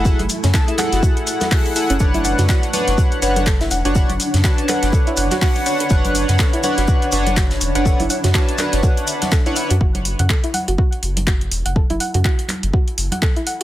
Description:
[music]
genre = deep house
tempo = 123 BPM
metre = 4/4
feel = swing 58% on 16ths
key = F# minor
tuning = A4 = 439 Hz
[part]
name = chorused polysynth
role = stabs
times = 0.0-9.7 s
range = D4 to A5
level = -21 LUFS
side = equal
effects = sidechain pumping, tape echo
[part]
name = round analog bass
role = bass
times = 0.0-13.1 s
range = E1 to F#2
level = -20 LUFS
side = equal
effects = tube saturation, sidechain pumping
[part]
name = granular cloud pad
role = texture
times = 0.0-13.6 s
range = A3 to B5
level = -28 LUFS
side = equal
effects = built-in reverb, sidechain pumping
[part]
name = soft round pluck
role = arpeggios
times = 0.1-13.6 s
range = C#4 to F#5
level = -26 LUFS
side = right 2 dB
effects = chorus, vintage 12-bit sampler grit, sidechain pumping, tape echo
[part]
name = electronic kick drum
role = drums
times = 0.1-13.3 s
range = none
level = -16 LUFS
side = equal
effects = none
[part]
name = tight metal drum kit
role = drums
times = 0.1-9.8 s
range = hi-hat, shaker, snare drum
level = -32 LUFS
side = left 2 dB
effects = none
[part]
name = maracas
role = percussion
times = 0.1-9.8 s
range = none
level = -30 LUFS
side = left 3 dB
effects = none
[part]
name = deep house drum kit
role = drums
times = 0.2-13.6 s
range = handclaps, hi-hat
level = -24 LUFS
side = equal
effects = soft clipping on snare
[part]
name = congas and bongos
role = percussion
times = 0.2-13.2 s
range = none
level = -28 LUFS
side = right 1 dB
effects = none
[sound]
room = small room ambience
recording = dense, heavily limited modern master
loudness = -15 LUFS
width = side -14 dB against mid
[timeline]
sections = 0.0-9.8 A section; 9.8-13.6 B section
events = drop 0.0-9.8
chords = 0.0 F#m9; 2.0 Bmadd9; 9.8 F#m9

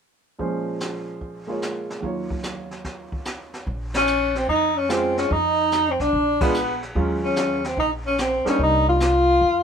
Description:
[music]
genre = jazz, small-group swing and bop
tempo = 146 BPM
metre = 4/4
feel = swing 67% on 8ths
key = Bb minor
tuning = A4 = 440 Hz
[part]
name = warm grand piano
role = accompaniment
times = 0.4-9.0 s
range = Eb2 to Db5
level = -26 LUFS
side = right 2 dB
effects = none
[part]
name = jazz brush drum kit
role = drums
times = 0.4-9.6 s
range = brushed snare drum, hi-hat, kick drum, ride cymbal, snare drum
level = -30 LUFS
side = equal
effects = none
[part]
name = upright bass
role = bass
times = 3.7-9.6 s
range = Bb1 to F2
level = -27 LUFS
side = equal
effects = none
[part]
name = trombone with bucket mute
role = second line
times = 3.9-9.6 s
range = Cb4 to F4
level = -26 LUFS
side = right 2 dB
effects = none
[part]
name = warm tenor saxophone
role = melody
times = 4.0-9.6 s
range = Cb4 to F4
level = -20 LUFS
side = left 1 dB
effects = none
[sound]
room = light reverb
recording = minimal, uncompressed stereo recording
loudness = -20 LUFS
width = side -7 dB against mid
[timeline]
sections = 0.4-3.7 A section; 3.7-9.6 B section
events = band accent 3.9, 6.3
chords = 0.4 Bbm7; 2.0 Ebm9; 3.7 Bbm9; 5.3 Cmadd11; 6.1 Bb7b9; 6.9 Ebm11; 8.6 Cm9

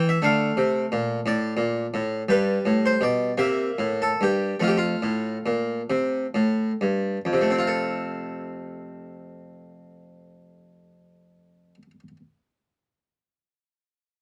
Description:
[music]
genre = classical, baroque-style suite movement for harpsichord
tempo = 43-59 BPM (dotted quarters)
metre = 6/8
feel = rubato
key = F major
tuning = A4 = 440 Hz
[part]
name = harpsichord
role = solo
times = 0.0-12.2 s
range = F2 to F5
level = -24 LUFS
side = equal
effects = none
[sound]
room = light reverb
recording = dark, warm production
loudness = -24 LUFS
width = mono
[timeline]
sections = 0.0-7.2 A section; 7.2-12.5 B section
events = slowing down 1.2-7.2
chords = 0.2 Dm; 2.3 G; 3.4 C7; 4.6 F

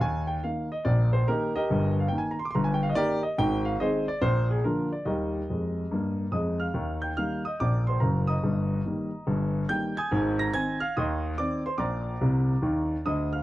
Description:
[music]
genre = jazz, stride piano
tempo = 143 BPM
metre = 4/4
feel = swing 66% on 8ths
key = Eb major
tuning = A4 = 440 Hz
[part]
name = warm grand piano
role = solo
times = 0.0-13.4 s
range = Gb1 to Bb6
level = -25 LUFS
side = equal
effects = none
[sound]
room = moderate small room ambience, RT60 0.5 s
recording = dry, close 1970s-style studio recording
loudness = -25 LUFS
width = side -16 dB against mid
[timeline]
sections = 0.0-6.8 A section; 6.8-13.4 A section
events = grand piano fill 12.2-13.4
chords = 0.0 Eb; 1.7 Eb/G; 3.4 Ab; 4.2 Bb; 5.1 Eb; 8.4 Eb/G; 10.1 Ab; 11.8 Bb

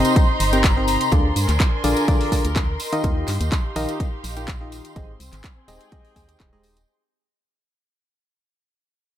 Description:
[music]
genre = piano house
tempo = 125 BPM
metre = 4/4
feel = straight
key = unclear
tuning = A4 = 440 Hz
[part]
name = muted studio violin section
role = sustained chords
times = 0.0-6.9 s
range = C6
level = -29 LUFS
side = right 4 dB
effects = sidechain pumping
[part]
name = barking FM electric piano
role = riff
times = 0.0-6.8 s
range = C3 to G5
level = -24 LUFS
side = left 1 dB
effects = chorus, sidechain pumping, ping-pong delay
[part]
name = organ-like FM bass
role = bass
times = 0.0-6.8 s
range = Eb1 to G2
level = -24 LUFS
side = equal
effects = sidechain pumping
[part]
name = house drum kit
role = drums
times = 0.0-6.9 s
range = handclaps, hi-hat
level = -28 LUFS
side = left 1 dB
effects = none
[part]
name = tambourine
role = percussion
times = 0.0-6.9 s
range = none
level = -35 LUFS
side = right 6 dB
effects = none
[part]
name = dark studio string section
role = texture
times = 0.0-6.9 s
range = C4 to Bb5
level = -27 LUFS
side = left 2 dB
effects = sidechain pumping
[part]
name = electronic kick drum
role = drums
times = 0.2-6.5 s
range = none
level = -20 LUFS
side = equal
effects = none
[sound]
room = light reverb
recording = none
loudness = -18 LUFS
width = side -11 dB against mid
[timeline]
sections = 0.0-6.9 A section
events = drop 0.0-6.9; fade-out 0.0-6.9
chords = 0.0 Cm7; 1.1 Bb7; 2.8 Ebadd9; 5.0 Abmaj7

